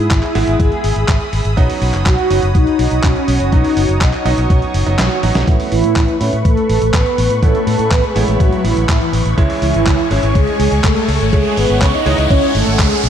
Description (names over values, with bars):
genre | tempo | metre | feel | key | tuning
italo disco | 123 BPM | 4/4 | straight | unclear | A4 = 441 Hz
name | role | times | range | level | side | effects
mellow synth brass | melody | 0.0-13.1 s | E3 to D#5 | -17 LUFS | equal | chorus, ping-pong delay
warm analog pad | sustained chords | 0.0-13.1 s | F#4 to D#6 | -24 LUFS | equal | chorus
bright baby grand piano | stabs | 0.0-13.1 s | E3 to E4 | -23 LUFS | right 4 dB | low-pass filter, tape echo
fingered electric bass with an envelope filter | bass | 0.0-13.1 s | F#1 to A2 | -17 LUFS | equal | none
dusty soul sampler-style drum kit | drums | 0.1-13.1 s | handclaps, hi-hat, snare drum | -22 LUFS | equal | small room reverb
electronic kick drum | drums | 0.1-12.9 s | none | -15 LUFS | equal | small room reverb
riser | sound effects | 6.6-13.1 s | none | -26 LUFS | right 1 dB | none
room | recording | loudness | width
moderate lush hall reverb, RT60 1.9 s | dark, warm production | -12 LUFS | side -9 dB against mid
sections
0.0-5.5 A section; 5.5-13.1 B section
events
kick drops out 5.0-5.5; drum fill 5.0-5.5; filter sweep on grand piano 5.5-13.1; riser 6.6-13.1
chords
0.0 E/G#; 1.6 Badd9; 5.5 Aadd9; 9.4 C#m